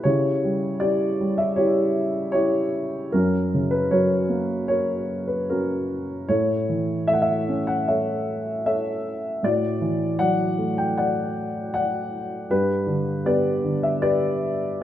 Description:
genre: classical, lyrical solo piano.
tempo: 78 BPM.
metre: 4/4.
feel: rubato.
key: unclear.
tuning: A4 = 440 Hz.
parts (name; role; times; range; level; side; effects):
dark upright piano; solo; 0.0-14.8 s; F#2 to G5; -21 LUFS; equal; none.
room: moderate recital hall reverb, RT60 1.4 s.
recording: minimal, uncompressed stereo recording.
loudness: -21 LUFS.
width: side -12 dB against mid.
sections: 0.0-14.8 A section.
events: none.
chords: 0.0 C#dim; 3.1 F#; 6.3 A; 9.4 Dadd9/A; 12.5 G.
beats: | 0.04 0.81 1.58 2.34 | 3.12 3.90 4.69 5.49 | 6.29 7.08 7.87 8.65 | 9.43 10.19 10.96 11.74 | 12.51 13.27 14.04 14.81.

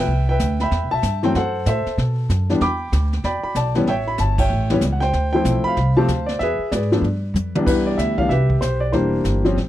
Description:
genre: jazz piano trio.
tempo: 190 BPM.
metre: 4/4.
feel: swing 63% on 8ths.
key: A minor.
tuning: A4 = 440 Hz.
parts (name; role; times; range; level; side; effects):
warm baby grand piano; melody; 0.0-9.7 s; C2 to D6; -20 LUFS; left 1 dB; none.
upright bass; bass; 0.0-9.7 s; E1 to B2; -21 LUFS; right 1 dB; none.
jazz brush drum kit; drums; 0.1-9.7 s; brushed snare drum, crash cymbal, hi-hat, kick drum, snare drum, toms; -26 LUFS; equal; none.
room: little or no reverb.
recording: dry, close 1970s-style studio recording.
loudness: -17 LUFS.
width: side -13 dB against mid.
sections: 0.0-7.7 A section; 7.7-9.7 B section.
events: band accent 4.3; drum fill 7.0-7.7.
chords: 0.1 Cmaj7; 1.3 F#m7b5; 2.0 B5; 2.6 Em7; 3.9 A7; 5.1 Dm7; 6.4 E7; 7.0 G7; 7.7 Cmaj9; 8.9 Em7b5.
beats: | 0.09 0.40 0.72 1.03 | 1.35 1.66 1.98 2.29 | 2.61 2.92 3.24 3.56 | 3.87 4.19 4.50 4.82 | 5.13 5.45 5.77 6.08 | 6.40 6.71 7.03 7.35 | 7.66 7.98 8.30 8.61 | 8.93 9.24 9.56.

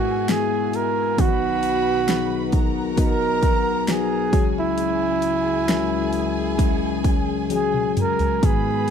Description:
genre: pop ballad.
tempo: 67 BPM.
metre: 4/4.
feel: straight.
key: unclear.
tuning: A4 = 441 Hz.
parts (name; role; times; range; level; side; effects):
mellow flugelhorn; melody; 0.0-8.9 s; E4 to A#4; -23 LUFS; right 4 dB; tape echo.
warm studio violin section; second line; 0.0-8.9 s; G#4 to B5; -33 LUFS; left 1 dB; none.
bell-like tine electric piano; accompaniment; 0.0-8.9 s; B1 to D#5; -25 LUFS; left 13 dB; none.
chorused pulse-width pad; sustained chords; 0.0-8.9 s; C#2 to F#5; -31 LUFS; right 1 dB; none.
fingerpicked steel-string acoustic guitar; arpeggios; 0.0-8.9 s; G#2 to B4; -31 LUFS; right 13 dB; none.
pop drum kit; drums; 0.3-8.9 s; hi-hat, kick drum, snare drum, toms; -21 LUFS; equal; none.
room: digital ambience.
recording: dry, close 1970s-style studio recording.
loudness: -18 LUFS.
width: side -7 dB against mid.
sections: 0.0-8.9 A section.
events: drum fill 7.5-8.4.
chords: 0.0 Eadd9/G#; 1.2 B; 4.3 C#sus4.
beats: 0.28 | 1.18 2.08 2.97 3.88 | 4.78 5.68 6.59 7.51 | 8.43.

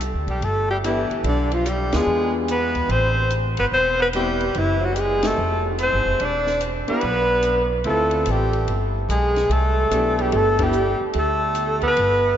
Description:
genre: jazz, small-group swing and bop.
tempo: 146 BPM.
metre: 4/4.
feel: swing 66% on 8ths.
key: C major.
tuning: A4 = 436 Hz.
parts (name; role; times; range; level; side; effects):
upright bass; bass; 0.0-12.4 s; E1 to E2; -24 LUFS; equal; none.
compact cocktail drum kit; drums; 0.0-12.1 s; hi-hat, kick drum, ride cymbal, snare drum; -34 LUFS; equal; none.
breathy alto saxophone; melody; 0.3-12.4 s; D4 to D5; -22 LUFS; left 1 dB; none.
clear tenor saxophone; second line; 0.3-12.3 s; D3 to D4; -25 LUFS; right 2 dB; none.
clear grand piano; accompaniment; 0.8-10.7 s; A3 to A4; -29 LUFS; left 2 dB; none.
room: wet cathedral reverb, RT60 5.4 s.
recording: in a vast, echoing space, nothing above 7.7 kHz.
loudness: -18 LUFS.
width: side -10 dB against mid.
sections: 0.0-12.4 A section.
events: band accent 1.9, 5.2, 10.5.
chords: 0.0 Cmaj9 (rootless); 1.3 Bdim; 2.1 E7b9; 2.9 Am9; 4.6 F#dim; 5.4 Fsus2; 6.2 E7(no3); 7.9 Dm7; 8.7 G; 9.5 Cmaj9; 11.2 D5.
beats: 0.01 0.43 0.84 | 1.25 1.67 2.08 2.49 | 2.91 3.32 3.73 4.14 | 4.56 4.97 5.38 5.79 | 6.21 6.62 7.03 7.44 | 7.86 8.27 8.68 9.09 | 9.50 9.92 10.33 10.74 | 11.15 11.56 11.98.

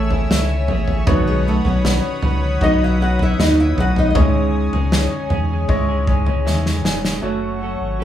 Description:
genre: pop ballad.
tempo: 78 BPM.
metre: 4/4.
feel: straight.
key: C# minor.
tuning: A4 = 440 Hz.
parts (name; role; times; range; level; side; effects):
flamenco guitar; melody; 0.0-8.0 s; G#3 to F#5; -23 LUFS; equal; none.
clear concert grand piano; accompaniment; 0.0-8.0 s; B2 to G#5; -24 LUFS; right 1 dB; none.
chorused pulse-width pad; sustained chords; 0.0-8.0 s; A3 to E6; -27 LUFS; left 3 dB; none.
direct-recorded clean electric guitar; arpeggios; 0.0-8.0 s; B2 to B4; -29 LUFS; right 4 dB; none.
warm sub bass; bass; 0.0-8.0 s; E1 to E2; -19 LUFS; left 1 dB; none.
natural country drum kit; drums; 0.1-7.2 s; kick drum, snare drum, toms; -20 LUFS; equal; none.
room: moderate studio ambience, RT60 0.4 s.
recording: band playing live in one room, studio reverb.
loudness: -15 LUFS.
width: side -11 dB against mid.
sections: 0.0-7.2 A section.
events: grand piano fill 5.7-7.2; drum fill 6.5-7.2.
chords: 0.0 Amaj7; 1.1 Badd9; 4.1 C#madd9; 7.2 F#m.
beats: 0.30 | 1.07 1.84 2.61 3.38 | 4.15 4.92 5.69 6.46 | 7.22 7.99.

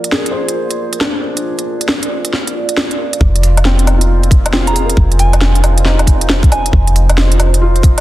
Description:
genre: future garage.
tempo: 136 BPM.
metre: 4/4.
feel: swing 63% on 16ths.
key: F dorian.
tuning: A4 = 440 Hz.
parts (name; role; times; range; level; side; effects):
felt-muted upright piano; accompaniment; 0.0-8.0 s; C4 to C5; -22 LUFS; left 2 dB; sidechain pumping, tape echo.
deep dark ambient pad; sustained chords; 0.0-8.0 s; F4 to Bb5; -22 LUFS; right 3 dB; chorus, built-in reverb, vintage 12-bit sampler grit, sidechain pumping.
organic electronic drum kit; drums; 0.0-8.0 s; hi-hat, snare drum, woodblock; -17 LUFS; equal; none.
soft 808-style bass; bass; 3.2-8.0 s; F1; -12 LUFS; equal; tube saturation, sidechain pumping.
electronic kick drum; drums; 3.2-7.9 s; none; -9 LUFS; equal; none.
soft synth bell; melody; 4.7-6.9 s; Ab5 to Bb5; -22 LUFS; right 1 dB; chorus, vintage 12-bit sampler grit, tape echo.
room: digital ambience.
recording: dense, heavily limited modern master.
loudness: -10 LUFS.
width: side -15 dB against mid.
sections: 0.0-3.2 A section; 3.2-8.0 B section.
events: none.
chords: 0.0 Bb/F; 3.2 Fm7.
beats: 0.12 0.56 1.00 | 1.44 1.89 2.33 2.77 | 3.21 3.65 4.09 4.53 | 4.97 5.41 5.86 6.30 | 6.74 7.18 7.62.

